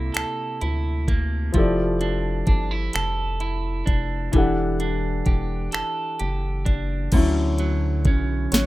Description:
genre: slow six-eight R&B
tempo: 43 BPM (dotted quarters)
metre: 6/8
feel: straight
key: unclear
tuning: A4 = 440 Hz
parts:
  - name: electric guitar at the edge of break-up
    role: second line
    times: 0.0-8.7 s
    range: C3 to A4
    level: -28 LUFS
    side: right 4 dB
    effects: plate reverb
  - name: warm grand piano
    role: accompaniment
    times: 0.0-8.7 s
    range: C3 to F#5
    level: -27 LUFS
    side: left 3 dB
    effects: plate reverb
  - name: rubbery square bass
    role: bass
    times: 0.0-8.7 s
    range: E1 to D2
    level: -25 LUFS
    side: equal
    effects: none
  - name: smooth R&B drum kit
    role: drums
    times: 0.1-8.7 s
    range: crash cymbal, finger snaps, hi-hat, kick drum, snare drum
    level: -21 LUFS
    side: equal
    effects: none
room: light reverb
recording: rough home demo mix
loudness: -20 LUFS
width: side -17 dB against mid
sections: 0.0-7.1 A section; 7.1-8.7 B section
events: grand piano solo 7.1-8.7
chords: 0.0 C13; 1.5 Fmaj13; 4.3 Em11; 7.1 Dmaj9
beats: 0.15 | 1.54 2.94 | 4.33 5.73 | 7.12 8.52

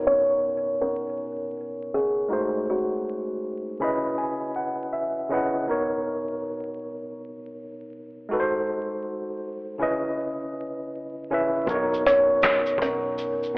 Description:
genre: lo-fi hip hop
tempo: 80 BPM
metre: 4/4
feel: swing 63% on 16ths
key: B major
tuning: A4 = 442 Hz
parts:
  - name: tine electric piano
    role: accompaniment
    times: 0.0-13.6 s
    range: B2 to B5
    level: -27 LUFS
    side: equal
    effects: overdrive, fast stereo tremolo, cassette tape, low-pass filter
  - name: kalimba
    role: melody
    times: 0.1-4.9, 12.1-13.6 s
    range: F#4 to C#5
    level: -24 LUFS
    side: equal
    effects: low-pass filter
  - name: deep dub fingered electric bass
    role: bass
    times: 11.7-13.6 s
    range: B1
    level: -37 LUFS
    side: equal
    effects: none
  - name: dusty soul sampler-style drum kit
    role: drums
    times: 11.7-13.5 s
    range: handclaps, hi-hat, kick drum, shaker, snare drum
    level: -26 LUFS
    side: equal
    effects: vintage 12-bit sampler grit
room: moderate plate reverb, RT60 2.7 s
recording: vinyl crackle, telephone sound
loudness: -23 LUFS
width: side -29 dB against mid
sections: 0.0-11.7 A section; 11.7-13.6 B section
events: filter sweep 0.0-11.7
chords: 0.0 Bmaj9; 2.3 G#7b9; 3.8 C#m9; 5.7 Bmaj9; 8.3 G#7b9; 9.8 C#m9; 11.7 Bmaj9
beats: 0.42 1.17 1.92 | 2.67 3.42 4.17 4.92 | 5.67 6.42 7.17 7.92 | 8.67 9.42 10.17 10.92 | 11.67 12.42 13.17

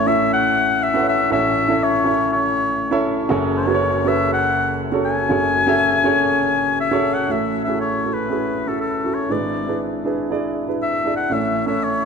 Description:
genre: pop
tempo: 120 BPM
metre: 4/4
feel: straight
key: A major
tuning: A4 = 445 Hz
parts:
  - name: warm oboe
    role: melody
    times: 0.0-12.1 s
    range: A4 to G#5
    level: -20 LUFS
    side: left 3 dB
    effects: none
  - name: warm grand piano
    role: accompaniment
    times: 0.0-12.1 s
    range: F#1 to F#5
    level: -19 LUFS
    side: right 1 dB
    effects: none
room: moderate concert hall reverb, RT60 2.1 s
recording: none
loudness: -17 LUFS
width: side -6 dB against mid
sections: 0.0-7.3 A section; 7.3-12.1 B section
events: none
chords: 0.0 A; 3.3 F#madd9; 7.3 A6; 9.3 E7/G#; 11.3 A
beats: 0.31 0.81 | 1.31 1.81 2.31 2.81 | 3.30 3.80 4.30 4.80 | 5.30 5.80 6.30 6.79 | 7.29 7.80 8.30 8.80 | 9.30 9.80 10.30 10.80 | 11.31 11.81

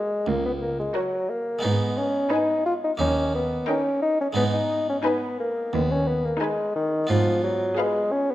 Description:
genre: classical, baroque-style concerto movement with solo episodes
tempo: 88 BPM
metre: 4/4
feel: straight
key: unclear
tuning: A4 = 441 Hz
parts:
  - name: dark bassoon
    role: melody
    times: 0.0-8.3 s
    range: D#3 to E#4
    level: -24 LUFS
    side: left 1 dB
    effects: none
  - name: rich chamber violin section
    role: melody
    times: 0.0-8.3 s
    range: C#5 to G#5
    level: -35 LUFS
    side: left 4 dB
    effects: none
  - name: rich chamber violin section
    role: second line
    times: 0.0-8.3 s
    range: A#4 to B4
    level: -32 LUFS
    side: left 2 dB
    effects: none
  - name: harpsichord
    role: accompaniment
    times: 0.0-8.3 s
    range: C#2 to F#4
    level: -31 LUFS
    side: right 1 dB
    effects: none
  - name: rich chamber viola section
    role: accompaniment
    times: 0.0-8.3 s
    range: D#4 to Ab4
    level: -31 LUFS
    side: right 1 dB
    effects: none
  - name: clear chamber cello section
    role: bass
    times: 0.3-7.6 s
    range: C#2 to G#2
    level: -27 LUFS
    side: right 2 dB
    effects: none
room: wet recital hall reverb, RT60 1.6 s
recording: dark, warm production, lossy compression artefacts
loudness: -22 LUFS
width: side -14 dB against mid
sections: 0.0-8.3 A section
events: none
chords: 0.0 F#; 1.6 G#m; 3.0 D#; 4.4 G#m; 7.1 Fdim/Ab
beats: 0.27 0.95 | 1.64 2.32 3.01 3.69 | 4.37 5.05 5.74 6.42 | 7.10 7.78

